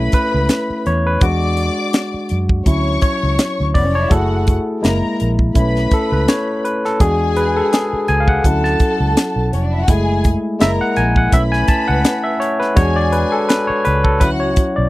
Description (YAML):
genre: lush 1970s-style soul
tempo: 83 BPM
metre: 4/4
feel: swing 54% on 16ths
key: unclear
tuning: A4 = 440 Hz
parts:
  - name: warm studio string section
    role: second line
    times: 0.0-14.6 s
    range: B3 to D6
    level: -24 LUFS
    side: left 1 dB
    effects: none
  - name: barky tine electric piano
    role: accompaniment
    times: 0.0-14.9 s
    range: F#3 to A5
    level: -17 LUFS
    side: left 1 dB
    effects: overdrive
  - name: vintage muted fingered electric bass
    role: bass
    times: 0.0-14.9 s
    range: E#1 to F#2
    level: -18 LUFS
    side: equal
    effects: none
  - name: tight funk drum kit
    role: drums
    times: 0.1-14.8 s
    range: hi-hat, kick drum, snare drum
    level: -15 LUFS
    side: equal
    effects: none
room: little or no reverb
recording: dry, close 1970s-style studio recording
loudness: -14 LUFS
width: side -18 dB against mid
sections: 0.0-14.9 A section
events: tine electric piano solo 0.0-14.9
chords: 0.0 B9sus4; 1.2 E7; 2.7 Dmaj7; 4.1 F#m9; 4.8 F#7; 5.6 B9sus4; 7.0 E7; 8.4 Dmaj7; 9.9 F#m9; 10.6 F#7; 11.3 B9sus4; 12.8 E7; 14.2 Dmaj7